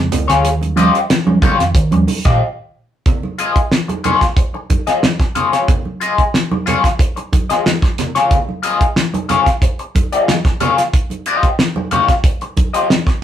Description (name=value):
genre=funk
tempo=92 BPM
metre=4/4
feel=straight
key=unclear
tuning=A4 = 440 Hz
part: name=mellow tine electric piano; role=stabs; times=0.0-2.3 s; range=Eb3 to Db4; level=-17 LUFS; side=right 3 dB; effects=none
part: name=hollow-body short-scale fingered electric bass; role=bass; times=0.0-2.4 s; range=Db2 to Eb3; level=-18 LUFS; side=right 1 dB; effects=none
part: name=damped 70s drum kit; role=drums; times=0.1-13.2 s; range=hi-hat, kick drum, snare drum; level=-15 LUFS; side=right 1 dB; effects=none
part: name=congas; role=percussion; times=0.1-13.2 s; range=none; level=-23 LUFS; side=right 3 dB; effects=none
part: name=electric guitar at the edge of break-up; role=accompaniment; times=0.3-13.1 s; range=F4 to Eb5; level=-16 LUFS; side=left 4 dB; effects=wah
room=moderate studio reverb, RT60 0.5 s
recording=rough rehearsal-room recording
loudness=-13 LUFS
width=side -10 dB against mid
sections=0.0-3.1 A section; 3.1-13.2 B section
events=break 2.4-3.1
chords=0.4 Eb9; 3.1 Fm7; 10.9 Eb9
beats=| 0.45 1.10 1.75 2.41 | 3.06 3.72 4.37 5.03 | 5.68 6.34 7.00 7.65 | 8.31 8.97 9.62 10.28 | 10.93 11.59 12.24 12.90